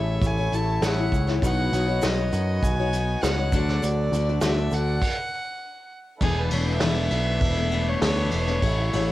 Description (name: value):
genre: folk rock and heartland rock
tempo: 100 BPM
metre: 4/4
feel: straight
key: E mixolydian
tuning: A4 = 440 Hz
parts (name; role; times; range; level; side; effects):
- clear fiddle; melody; 0.0-9.1 s; G#4 to A5; -30 LUFS; right 1 dB; cassette tape
- picked steel-string acoustic guitar; accompaniment; 0.0-9.1 s; E2 to D5; -28 LUFS; left 6 dB; cassette tape
- hand-pumped harmonium; sustained chords; 0.0-9.1 s; A3 to D5; -34 LUFS; right 2 dB; cassette tape
- picked electric bass; bass; 0.0-9.1 s; E1 to F#2; -25 LUFS; right 1 dB; none
- vintage brush drum kit; drums; 0.2-9.1 s; crash cymbal, hi-hat, kick drum, ride cymbal, snare drum; -27 LUFS; right 1 dB; cassette tape
- egg shaker; percussion; 0.2-4.9 s; none; -44 LUFS; right 9 dB; none
room: light reverb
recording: home recording on cassette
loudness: -21 LUFS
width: side -15 dB against mid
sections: 0.0-6.2 A section; 6.2-9.1 B section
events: stop 5.0-6.2; fiddle solo 6.2-9.1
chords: 0.0 Amaj7; 1.4 Badd9; 3.5 D; 6.2 E7sus4; 8.6 Amaj7